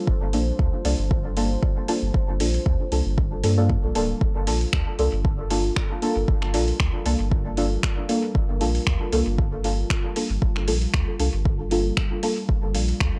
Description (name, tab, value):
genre	dub techno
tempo	116 BPM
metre	4/4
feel	swing 54% on 16ths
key	G minor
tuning	A4 = 440 Hz
part	deep dark ambient pad	sustained chords	0.0-13.2 s	G3 to D5	-37 LUFS	equal	chorus, built-in reverb, sidechain pumping
part	warm sub bass	bass	0.1-13.1 s	D1 to G2	-27 LUFS	equal	tube saturation, sidechain pumping
part	electronic kick drum	drums	0.1-13.1 s	none	-26 LUFS	equal	none
part	deep mellow chord stab	stabs	0.3-12.8 s	Bb3 to A4	-29 LUFS	equal	chorus, phaser, sidechain pumping, dub echo
part	soft vintage rhythm box	drums	0.3-13.1 s	finger snaps, hi-hat	-33 LUFS	equal	none
room	little or no reverb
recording	dry, gritty hardware recording, cassette tape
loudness	-23 LUFS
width	mono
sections	0.0-4.2 A section; 4.2-13.2 A section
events	filter sweep on synth stab 4.2-13.2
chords	0.0 Gm7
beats	| 0.07 0.59 1.11 1.63 | 2.14 2.66 3.18 3.69 | 4.21 4.73 5.25 5.76 | 6.28 6.80 7.32 7.83 | 8.35 8.87 9.38 9.90 | 10.42 10.94 11.45 11.97 | 12.49 13.01